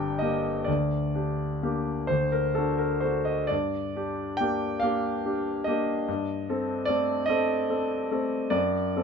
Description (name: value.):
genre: classical, romantic nocturne for solo piano.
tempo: 42-50 BPM (dotted quarters).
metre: 12/8.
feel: rubato.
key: G minor.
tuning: A4 = 439 Hz.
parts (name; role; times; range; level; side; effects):
clear concert grand piano; solo; 0.0-9.0 s; G1 to G5; -25 LUFS; equal; none.
room: moderate studio reverb, RT60 0.6 s.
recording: none.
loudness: -25 LUFS.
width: side -6 dB against mid.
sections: 0.0-9.0 A section.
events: none.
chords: 0.0 Gm; 0.7 Gm/D; 2.1 D; 3.5 Gm; 6.1 Am7b5/G.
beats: 0.69 2.11 | 3.51 4.83 6.08 7.29 | 8.54.